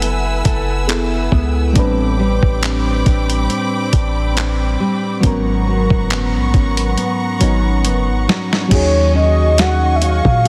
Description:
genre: contemporary R&B.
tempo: 69 BPM.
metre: 4/4.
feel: swing 54% on 16ths.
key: unclear.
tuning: A4 = 441 Hz.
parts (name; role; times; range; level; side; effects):
mellow FM electric piano; accompaniment; 0.0-10.5 s; F#3 to B4; -24 LUFS; equal; chorus.
warm studio string section; sustained chords; 0.0-10.5 s; B3 to E6; -26 LUFS; equal; none.
nylon-string guitar; arpeggios; 0.0-10.5 s; G#2 to A4; -24 LUFS; equal; digital delay.
warm 808-style bass; bass; 0.0-10.5 s; F#1 to A#2; -20 LUFS; equal; none.
dusty soul sampler-style drum kit; drums; 0.0-10.5 s; crash cymbal, handclaps, hi-hat, kick drum, snare drum; -20 LUFS; equal; none.
mellow horn-like synth lead; melody; 8.7-10.5 s; C#5 to F#5; -18 LUFS; equal; chorus.
room: light reverb.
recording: heavily compressed radio sound.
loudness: -16 LUFS.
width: mono.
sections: 0.0-8.7 A section; 8.7-10.5 B section.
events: drum fill 7.0-8.7.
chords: 0.0 F#m11; 1.8 Am11; 5.2 G#m11; 8.7 D#m11.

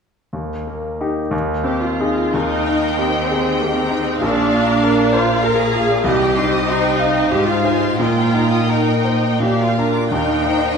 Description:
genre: classical.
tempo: 81-101 BPM.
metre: 3/4.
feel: rubato.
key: Eb major.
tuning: A4 = 435 Hz.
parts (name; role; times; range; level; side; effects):
bright grand piano; melody; 0.3-10.8 s; Bb1 to F5; -19 LUFS; left 1 dB; none.
rich symphonic viola section; accompaniment; 1.6-10.8 s; Bb3 to Bb4; -19 LUFS; right 2 dB; none.
rich symphonic violin section; melody; 2.3-10.8 s; Eb5 to G5; -26 LUFS; left 2 dB; none.
rich studio violin section; second line; 2.3-10.8 s; Bb4 to Eb6; -25 LUFS; left 3 dB; none.
rich symphonic cello section; bass; 2.3-10.8 s; Ab2 to Eb3; -23 LUFS; right 2 dB; none.
room: wet scoring stage reverb, RT60 1.9 s.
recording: recorded in a church or concert hall.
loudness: -15 LUFS.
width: side -6 dB against mid.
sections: 0.3-2.3 A section; 2.3-10.8 B section.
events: none.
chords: 0.3 Eb; 1.3 Ab/Eb; 2.3 Eb; 4.2 Bb; 6.1 Cm; 7.3 Fm7/Ab; 8.0 Eb/Bb; 9.4 Bb; 10.1 Eb.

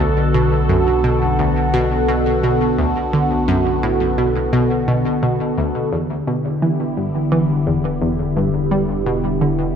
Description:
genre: ambient, sequencer-driven space music.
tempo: 86 BPM.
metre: 4/4.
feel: straight.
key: E minor.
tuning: A4 = 440 Hz.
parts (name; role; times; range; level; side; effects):
phased analog pad; sustained chords; 0.0-9.8 s; D3 to A4; -18 LUFS; equal; phaser, chorus.
analog pluck; riff; 0.0-9.6 s; D2 to G3; -20 LUFS; equal; chorus, tape echo.
fat analog bass; bass; 0.0-9.8 s; E1 to B1; -24 LUFS; right 1 dB; none.
room: wet scoring stage reverb, RT60 2.1 s.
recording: dark, warm production.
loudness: -15 LUFS.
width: side -8 dB against mid.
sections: 0.0-9.8 A section.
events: none.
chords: 0.0 Bm7; 5.9 Em7.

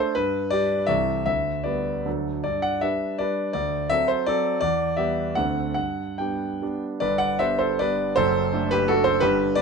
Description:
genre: classical, romantic triple-time dance for piano with dotted rhythms.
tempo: 130-186 BPM.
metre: 3/4.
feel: rubato.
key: G major.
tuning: A4 = 439 Hz.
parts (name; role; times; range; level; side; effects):
warm concert grand piano; solo; 0.0-9.6 s; F#1 to G5; -21 LUFS; equal; none.
room: light reverb.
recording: close, detailed microphones.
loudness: -21 LUFS.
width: side -5 dB against mid.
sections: 0.0-7.0 A section; 7.0-9.6 B section.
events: none.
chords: 0.2 G; 0.9 Am/C; 1.3 G/D; 2.1 D; 2.5 G; 3.5 D7; 4.6 Em; 5.4 D7; 5.8 G; 8.2 D7/F#.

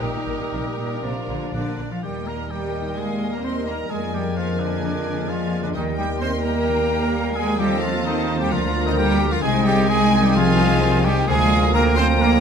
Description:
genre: classical, dramatic, fast romantic movement for symphony orchestra.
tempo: 129 BPM.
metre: 4/4.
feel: straight.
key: Eb major.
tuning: A4 = 444 Hz.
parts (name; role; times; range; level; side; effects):
rich studio violin section; melody; 0.0-12.4 s; Bb4 to Bb5; -33 LUFS; left 2 dB; none.
bright silver concert flute; second line; 0.0-12.4 s; Bb4 to Ab5; -31 LUFS; left 3 dB; none.
clear symphonic violin section; second line; 0.0-12.4 s; F4 to C6; -30 LUFS; left 3 dB; none.
warm clarinet; second line; 0.0-12.4 s; G4 to Bb4; -34 LUFS; left 3 dB; none.
warm oboe; second line; 0.0-12.4 s; D4 to Eb5; -32 LUFS; right 2 dB; none.
rich symphonic viola section; accompaniment; 0.0-12.4 s; Bb3 to Bb4; -31 LUFS; right 3 dB; none.
warm bassoon; accompaniment; 0.0-12.4 s; Eb3 to Ab3; -32 LUFS; right 4 dB; none.
dark French horn section; sustained chords; 0.0-12.4 s; F3 to Bb4; -32 LUFS; left 5 dB; none.
concert harp; arpeggios; 0.0-12.4 s; Bb2 to Eb5; -28 LUFS; left 12 dB; none.
rich symphonic cello section; bass; 0.0-12.4 s; Bb2 to C4; -24 LUFS; right 1 dB; none.
rich symphonic double bass section; bass; 0.0-12.4 s; Bb1 to F2; -26 LUFS; right 3 dB; none.
mellow trumpet; stabs; 1.5-12.4 s; D4 to C5; -28 LUFS; right 2 dB; none.
clear trombone section; sustained chords; 2.0-12.4 s; C3 to Ab3; -32 LUFS; right 4 dB; none.
room: moderate scoring stage reverb, RT60 1.7 s.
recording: none.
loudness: -18 LUFS.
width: side -7 dB against mid.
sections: 0.0-2.0 A section; 2.0-12.4 B section.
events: none.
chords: 0.0 Eb/Bb; 1.0 Bb; 2.0 Eb; 3.9 Bb7/F; 5.8 Eb; 7.6 F7/Eb; 8.5 Bb/D; 9.4 Ab/C; 11.3 Bb7/D.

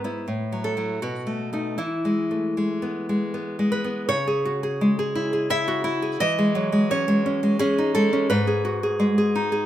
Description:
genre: romantic piece for solo classical guitar.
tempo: 77-87 BPM.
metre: 3/4.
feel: rubato.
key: E major, C# minor from 4.1 s.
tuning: A4 = 440 Hz.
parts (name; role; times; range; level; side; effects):
nylon-string guitar; solo; 0.0-9.7 s; G#2 to E5; -21 LUFS; equal; none.
room: moderate recital hall reverb, RT60 1.4 s.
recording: minimal, uncompressed stereo recording.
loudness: -21 LUFS.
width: side -12 dB against mid.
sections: 0.0-4.1 A section; 4.1-9.7 B section.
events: none.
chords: 0.3 F#m7/A; 1.0 B7; 1.8 E; 4.1 C#m; 6.2 C#m/E; 8.3 G#m.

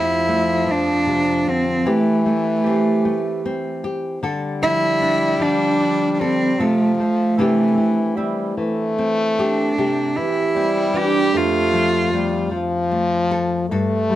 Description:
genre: acoustic folk-pop ballad.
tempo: 76 BPM.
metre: 3/4.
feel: straight.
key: F major.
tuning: A4 = 440 Hz.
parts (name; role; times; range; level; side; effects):
warm cello; melody; 0.0-12.5 s; A3 to G4; -19 LUFS; right 2 dB; none.
warm French horn; second line; 0.0-14.2 s; E3 to A3; -22 LUFS; left 2 dB; none.
nylon-string guitar; accompaniment; 0.0-14.2 s; F2 to A4; -24 LUFS; left 3 dB; none.
concert harp; arpeggios; 0.3-13.7 s; D4 to C5; -26 LUFS; right 7 dB; none.
room: light reverb.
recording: none.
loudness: -17 LUFS.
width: side -13 dB against mid.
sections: 0.0-14.2 A section.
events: none.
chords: 0.0 Fadd9; 1.9 Am7/E; 4.2 Dm; 6.6 F/C; 7.4 Cadd9; 11.3 F.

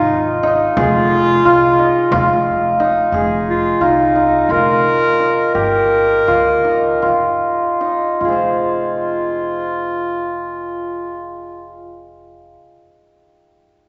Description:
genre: contemporary instrumental, chamber music in an uneven meter.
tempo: 146-178 BPM (eighths).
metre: 7/8.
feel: straight.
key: F minor.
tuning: A4 = 437 Hz.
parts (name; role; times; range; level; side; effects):
clear clarinet; melody; 0.0-11.8 s; Eb4 to Bb4; -20 LUFS; equal; none.
hammered dulcimer; arpeggios; 0.0-12.6 s; Eb4 to F5; -18 LUFS; equal; none.
upright bass; bass; 0.0-12.5 s; F1 to Db2; -28 LUFS; equal; none.
frame drum; percussion; 0.1-3.0 s; none; -27 LUFS; equal; none.
room: wet concert hall reverb, RT60 1.8 s.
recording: nothing above 7.8 kHz.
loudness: -16 LUFS.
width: mono.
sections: 0.0-3.1 A section; 3.1-8.2 B section; 8.2-11.1 C section.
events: slowing down 3.1-8.2.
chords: 0.0 Fm7/Ab; 0.8 Fm7; 5.5 Gdim; 8.2 Fm.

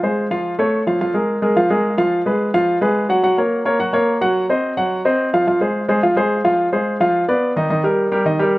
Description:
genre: jazz.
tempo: 215 BPM.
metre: 4/4.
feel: straight.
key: F minor.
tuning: A4 = 441 Hz.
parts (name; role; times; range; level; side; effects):
warm baby grand piano; solo; 0.0-8.6 s; Eb3 to Gb5; -15 LUFS; equal; none.
room: little or no reverb.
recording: recorded outdoors, with no room sound.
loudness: -15 LUFS.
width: side -19 dB against mid.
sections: 0.0-1.0 A section; 1.0-8.6 B section.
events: none.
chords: 0.4 Faug; 1.0 Bb5; 2.1 Fdim; 3.2 Gb; 4.4 Ebm69; 5.5 Fm; 7.1 Bdim; 7.7 Eb.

